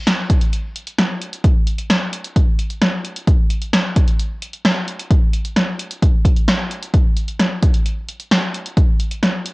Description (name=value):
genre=pop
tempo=131 BPM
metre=4/4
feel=straight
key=none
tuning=none
part: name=punchy analog drum machine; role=drums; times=0.1-9.5 s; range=hi-hat, kick drum, snare drum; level=-15 LUFS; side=equal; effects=cassette tape
room=moderate spring reverb, RT60 1.3 s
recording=home recording on cassette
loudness=-15 LUFS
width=side -24 dB against mid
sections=0.0-9.5 A section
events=none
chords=none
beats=0.07 0.53 0.98 | 1.44 1.90 2.36 2.82 | 3.27 3.73 4.19 4.65 | 5.11 5.56 6.02 6.48 | 6.94 7.40 7.86 8.31 | 8.77 9.23